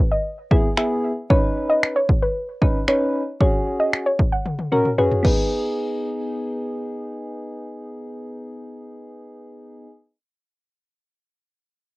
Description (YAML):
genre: dance-pop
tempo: 114 BPM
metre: 4/4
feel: straight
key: G# minor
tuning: A4 = 439 Hz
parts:
  - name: soft round pluck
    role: melody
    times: 0.1-7.0 s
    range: B4 to F#5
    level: -22 LUFS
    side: equal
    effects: chorus, sidechain pumping, cassette tape
  - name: soft electric-piano-like synth keys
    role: accompaniment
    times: 0.5-9.9 s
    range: B3 to B4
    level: -24 LUFS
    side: equal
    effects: chorus, sidechain pumping, cassette tape
  - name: punchy analog drum machine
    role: drums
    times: 0.5-5.4 s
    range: crash cymbal, finger snaps, kick drum, toms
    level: -19 LUFS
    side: equal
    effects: cassette tape
room: moderate booth ambience, RT60 0.2 s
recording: home recording on cassette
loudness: -18 LUFS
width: side -22 dB against mid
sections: 0.0-5.5 A section; 5.5-9.7 B section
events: drum fill 4.5-5.5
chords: 0.0 E; 1.3 Badd9; 3.4 F#sus2; 5.2 G#m